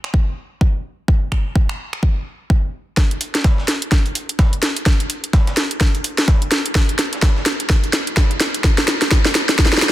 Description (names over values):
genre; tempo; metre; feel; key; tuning
house; 127 BPM; 4/4; swing 59% on 16ths; none; none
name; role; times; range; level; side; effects
garage drum kit; drums; 0.0-9.9 s; finger snaps, hi-hat, snare drum; -18 LUFS; equal; overdrive
electronic kick drum; drums; 0.1-9.7 s; none; -15 LUFS; equal; none
breakbeat sampler-style drum kit; drums; 3.0-9.9 s; hi-hat, snare drum; -31 LUFS; right 1 dB; high-pass filter on hats, high-pass filter on snare, high-pass filter on room
room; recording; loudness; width
light reverb; dense, heavily limited modern master; -15 LUFS; side -14 dB against mid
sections
0.0-3.0 A section; 3.0-9.9 B section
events
build-up 3.0-9.9; drum fill 3.0-9.9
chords
none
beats
0.14 0.61 | 1.08 1.55 2.03 2.50 | 2.97 3.44 3.92 4.39 | 4.86 5.33 5.81 6.28 | 6.75 7.22 7.70 8.17 | 8.64 9.11 9.59